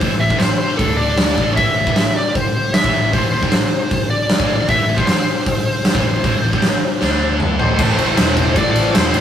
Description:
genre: hard rock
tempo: 154 BPM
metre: 4/4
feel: straight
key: A minor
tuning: A4 = 440 Hz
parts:
  - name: smooth overdriven lead guitar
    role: melody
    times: 0.0-9.2 s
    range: A4 to E5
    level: -20 LUFS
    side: left 2 dB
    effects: digital delay
  - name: heavy high-gain guitar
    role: riff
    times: 0.0-9.2 s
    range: G2 to D4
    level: -27 LUFS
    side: left 5 dB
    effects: distortion
  - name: scooped high-gain guitar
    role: riff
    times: 0.0-9.2 s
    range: G2 to D4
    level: -24 LUFS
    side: right 2 dB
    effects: distortion
  - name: picked electric bass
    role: bass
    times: 0.0-9.2 s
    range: E1 to D2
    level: -22 LUFS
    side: equal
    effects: none
  - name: big rock drum kit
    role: drums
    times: 0.0-9.2 s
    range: crash cymbal, hi-hat, kick drum, ride cymbal, snare drum, toms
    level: -16 LUFS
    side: equal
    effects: none
  - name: tonewheel organ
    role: sustained chords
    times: 7.8-9.2 s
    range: none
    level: barely audible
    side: none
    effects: none
  - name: tight distorted guitar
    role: riff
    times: 7.8-9.2 s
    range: A2 to A3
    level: -22 LUFS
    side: right 1 dB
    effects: distortion
room: moderate studio reverb, RT60 0.5 s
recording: rough rehearsal-room recording, warm saturation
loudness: -14 LUFS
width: side -9 dB against mid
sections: 0.0-7.8 A section; 7.8-9.2 B section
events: drum fill 7.0-7.8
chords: 0.0 Am; 0.8 D5; 1.4 Am; 7.0 D5; 7.6 Am

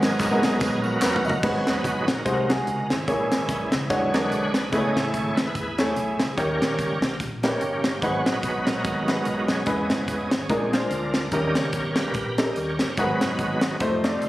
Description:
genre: uptempo gospel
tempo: 146 BPM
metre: 4/4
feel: swing 58% on 8ths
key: G# minor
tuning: A4 = 440 Hz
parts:
  - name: warm upright piano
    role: accompaniment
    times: 0.0-14.3 s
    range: G#2 to D#5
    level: -25 LUFS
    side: left 1 dB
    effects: none
  - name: bright tonewheel organ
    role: sustained chords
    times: 0.0-14.3 s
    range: D3 to D#5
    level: -27 LUFS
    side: right 2 dB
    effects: slow rotary speaker, overdrive, chorus vibrato
  - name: fingered electric bass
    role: bass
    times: 0.0-14.3 s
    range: E1 to D#2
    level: -33 LUFS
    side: equal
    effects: none
  - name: tight funk drum kit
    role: drums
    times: 0.0-14.3 s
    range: crash cymbal, hi-hat, kick drum, snare drum, toms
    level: -26 LUFS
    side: equal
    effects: none
  - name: tambourine and handclaps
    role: percussion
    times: 0.0-1.3 s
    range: none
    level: -32 LUFS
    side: left 1 dB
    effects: none
room: light reverb, small room ambience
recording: recorded on a phone in the room, studio reverb, compression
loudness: -21 LUFS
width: side -16 dB against mid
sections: 0.0-1.4 A section; 1.4-14.3 B section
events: tonewheel organ solo 0.0-1.4, 1.4-14.3; drum fill 0.6-1.4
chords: 0.0 G#m9; 2.3 G#7/B#; 3.1 A#m7b5; 3.9 E13; 4.7 Amaj7; 6.4 D#7; 8.0 G#m7; 9.7 C#m7/E; 10.5 A#7; 11.3 D#7; 13.0 G#m7

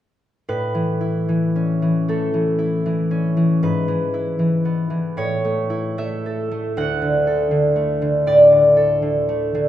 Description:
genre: classical, solo harp piece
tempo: 77 BPM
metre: 4/4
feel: rubato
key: A major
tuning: A4 = 441 Hz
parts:
  - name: concert harp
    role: solo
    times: 0.5-9.7 s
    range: D2 to F#5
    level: -16 LUFS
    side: equal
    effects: none
room: moderate recital hall reverb, RT60 1.5 s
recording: minimal, uncompressed stereo recording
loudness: -16 LUFS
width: side -12 dB against mid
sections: 0.5-9.7 A section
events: none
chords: 0.5 A; 3.6 E/G#; 5.2 A; 6.8 D

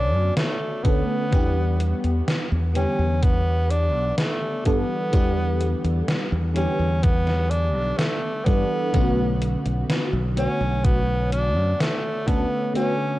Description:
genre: vaporwave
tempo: 63 BPM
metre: 4/4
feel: straight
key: unclear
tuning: A4 = 439 Hz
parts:
  - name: bright tenor saxophone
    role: melody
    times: 0.0-13.2 s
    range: A3 to D4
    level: -27 LUFS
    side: equal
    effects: tape echo
  - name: FM electric piano with soft pad layer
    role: accompaniment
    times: 0.0-13.2 s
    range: D3 to C#5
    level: -26 LUFS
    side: equal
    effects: phaser, ensemble chorus, cassette tape
  - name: modern bright fingered electric bass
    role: bass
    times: 0.0-12.4 s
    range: B1 to G2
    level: -23 LUFS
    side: equal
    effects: none
  - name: gated 80s digital drum machine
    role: drums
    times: 0.4-12.9 s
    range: hi-hat, snare drum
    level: -26 LUFS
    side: equal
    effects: gated reverb, gated reverb snare, overdrive
  - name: electronic kick drum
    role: drums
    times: 0.8-12.5 s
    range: none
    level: -20 LUFS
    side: equal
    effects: none
room: little or no reverb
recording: worn, warbling old tape, cassette tape, warbly pitch drift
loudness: -20 LUFS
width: side -16 dB against mid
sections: 0.0-13.2 A section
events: none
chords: 0.0 Bm9; 1.3 Em7; 8.9 Bm9

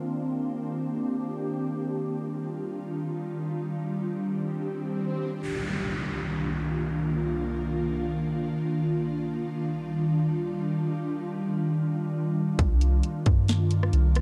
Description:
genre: hip hop, atmospheric cloud-rap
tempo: free time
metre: none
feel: none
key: unclear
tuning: A4 = 439 Hz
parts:
  - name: ethereal airy pad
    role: sustained chords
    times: 0.0-14.2 s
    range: C2 to G4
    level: -30 LUFS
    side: equal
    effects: ensemble chorus, built-in reverb, sidechain pumping, low-pass filter
  - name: swell and downlifter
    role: sound effects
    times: 4.4-9.0 s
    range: none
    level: -39 LUFS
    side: equal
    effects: none
  - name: soft 808-style bass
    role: bass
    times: 12.6-14.2 s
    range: C2 to G2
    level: -24 LUFS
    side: equal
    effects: none
  - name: trap drum kit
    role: drums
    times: 12.6-14.2 s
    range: hi-hat, kick drum, rim click, snare drum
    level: -27 LUFS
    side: equal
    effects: overdrive
room: light reverb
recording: dark, warm production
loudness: -28 LUFS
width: mono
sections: 0.0-5.4 A section; 5.4-14.2 B section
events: filter sweep on ambient pad 0.0-5.4; swell 4.4-5.4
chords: 0.0 Cm9; 1.8 Ebmaj9; 5.4 Cm11; 9.0 Ebmaj9; 12.6 Cm11

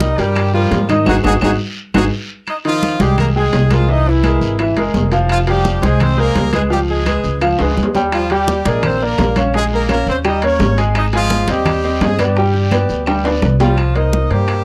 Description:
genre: latin, salsa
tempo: 170 BPM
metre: 4/4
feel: straight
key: C minor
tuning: A4 = 440 Hz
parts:
  - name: brilliant horn section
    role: melody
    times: 0.0-14.6 s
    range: E3 to Eb5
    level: -21 LUFS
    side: equal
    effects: none
  - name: clear grand piano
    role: accompaniment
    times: 0.0-14.6 s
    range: Eb3 to Ab5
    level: -20 LUFS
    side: equal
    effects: none
  - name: upright bass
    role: bass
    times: 0.0-14.6 s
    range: F1 to Ab2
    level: -19 LUFS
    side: equal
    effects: none
  - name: bongos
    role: percussion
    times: 0.0-2.0, 8.1-14.6 s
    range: none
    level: -28 LUFS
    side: equal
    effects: none
  - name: congas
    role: percussion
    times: 0.0-14.6 s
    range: none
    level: -24 LUFS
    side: equal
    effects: none
  - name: guiro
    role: percussion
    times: 0.0-13.8 s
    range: none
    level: -35 LUFS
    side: equal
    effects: none
  - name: timbales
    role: percussion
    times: 0.2-14.6 s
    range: none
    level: -26 LUFS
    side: equal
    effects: none
  - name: claves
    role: percussion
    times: 0.4-14.6 s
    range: none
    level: -33 LUFS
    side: equal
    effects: none
room: light reverb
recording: dry, close 1970s-style studio recording, lossy compression artefacts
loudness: -15 LUFS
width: mono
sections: 0.0-2.5 A section; 2.5-13.8 B section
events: band accent 1.1-2.5; drum fill 1.6-2.5, 7.6-8.1, 13.1-13.8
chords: 0.0 Cm7 (rootless); 1.1 Ab5; 2.5 Abmaj7; 3.9 C7alt; 5.3 Fmadd9; 6.7 Db9; 8.1 Ebmaj9; 9.5 Bbm9; 10.2 Eb7; 11.0 Ab6; 12.4 G7; 13.8 Cm7

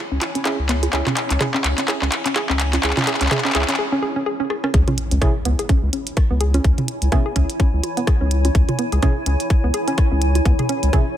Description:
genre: minimal techno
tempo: 126 BPM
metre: 4/4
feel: swing 57% on 16ths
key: C# minor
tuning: A4 = 441 Hz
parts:
  - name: granular cloud pad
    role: texture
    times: 0.0-11.2 s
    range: E4 to G#5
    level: -28 LUFS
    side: left 1 dB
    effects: built-in reverb, sidechain pumping
  - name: hollow square pluck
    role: riff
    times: 0.1-11.0 s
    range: B3 to G#4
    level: -25 LUFS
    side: right 1 dB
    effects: chorus, cassette tape, sidechain pumping, dub echo
  - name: round analog bass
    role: bass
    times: 0.1-10.9 s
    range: C#2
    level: -19 LUFS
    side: equal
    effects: sidechain pumping
  - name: minimal click drum kit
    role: drums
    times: 0.2-11.0 s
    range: handclaps, hi-hat, rim click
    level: -24 LUFS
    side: left 1 dB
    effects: overdrive, high-pass filter on snare, high-pass filter on hats
  - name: electronic bongos and toms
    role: percussion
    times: 0.2-11.0 s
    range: none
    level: -26 LUFS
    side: right 2 dB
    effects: tape echo
  - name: wavetable chord stab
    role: stabs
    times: 0.5-11.1 s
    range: C#4 to G#4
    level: -27 LUFS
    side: right 4 dB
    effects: tape echo
  - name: electronic kick drum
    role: drums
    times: 0.5-11.0 s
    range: none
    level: -17 LUFS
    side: equal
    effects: high-pass filter on kick
  - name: impact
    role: sound effects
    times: 4.7-6.6 s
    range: none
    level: -28 LUFS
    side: left 1 dB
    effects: none
room: light reverb, digital ambience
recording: none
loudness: -17 LUFS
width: side -11 dB against mid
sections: 0.0-4.7 A section; 4.7-11.2 B section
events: build-up 0.0-4.7; drum fill 0.0-3.8, 4.5; filter sweep on synth arpeggio sound 0.0-4.7; break 3.8-4.7; drop 4.7-11.2; impact 4.7-6.6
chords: 0.0 C#m

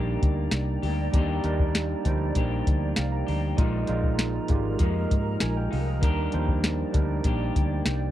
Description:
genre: indie pop, bedroom pop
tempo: 98 BPM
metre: 4/4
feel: straight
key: Eb major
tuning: A4 = 440 Hz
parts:
  - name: electric guitar through a small old amp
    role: accompaniment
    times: 0.0-8.1 s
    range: Bb2 to G4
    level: -33 LUFS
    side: left 3 dB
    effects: wide subtle chorus, warbly pitch drift
  - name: overdriven tine electric piano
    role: accompaniment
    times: 0.0-8.1 s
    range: F3 to Bb5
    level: -31 LUFS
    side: right 5 dB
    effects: cassette tape
  - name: granular cloud pad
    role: sustained chords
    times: 0.0-8.1 s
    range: Bb4 to Bb5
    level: -36 LUFS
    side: equal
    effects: built-in reverb
  - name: vintage muted fingered electric bass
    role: bass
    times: 0.0-8.1 s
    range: Ab1 to Ab2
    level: -28 LUFS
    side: equal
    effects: none
  - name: soft vintage rhythm box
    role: drums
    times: 0.2-8.0 s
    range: hi-hat, kick drum, snare drum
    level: -24 LUFS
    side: equal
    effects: none
room: little or no reverb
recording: dry, close 1970s-style studio recording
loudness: -23 LUFS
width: side -13 dB against mid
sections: 0.0-8.1 A section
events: tine electric piano fill 2.7-3.6, 7.6-8.1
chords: 0.0 Ebmaj7; 3.6 Bb7sus4; 6.0 Ebmaj7

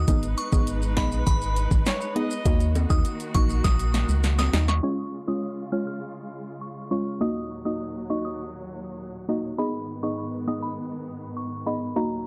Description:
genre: dancehall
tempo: 101 BPM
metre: 4/4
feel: straight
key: unclear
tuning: A4 = 440 Hz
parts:
  - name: glassy synth bell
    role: melody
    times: 0.0-12.1 s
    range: Bb5 to F6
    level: -37 LUFS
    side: equal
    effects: chorus, tape echo
  - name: clear studio string section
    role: sustained chords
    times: 0.0-12.3 s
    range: Eb2 to Cb5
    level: -38 LUFS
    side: equal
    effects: sidechain pumping
  - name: organ-like FM bass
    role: bass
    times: 0.0-4.8 s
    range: Ab1 to Eb2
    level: -26 LUFS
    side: equal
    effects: none
  - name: soft round pluck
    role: accompaniment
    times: 0.1-12.1 s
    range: Ab3 to Eb5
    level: -31 LUFS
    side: equal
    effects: chorus
  - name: deep house drum kit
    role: drums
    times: 0.1-4.8 s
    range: hi-hat, kick drum, snare drum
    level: -26 LUFS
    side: equal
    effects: none
  - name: maracas and timbales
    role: percussion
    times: 0.1-4.8 s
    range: none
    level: -40 LUFS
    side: equal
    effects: none
  - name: warm horn section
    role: second line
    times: 1.9-2.8 s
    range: Db5 to Eb5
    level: -36 LUFS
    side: equal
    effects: tape echo
room: digital ambience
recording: dark, warm production, low-pass filter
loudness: -26 LUFS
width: mono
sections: 0.0-4.8 A section; 4.8-12.3 B section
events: drum fill 3.6-4.8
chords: 0.1 Abm; 2.5 Ebm; 4.8 Db; 7.2 Ebm; 9.6 Abm

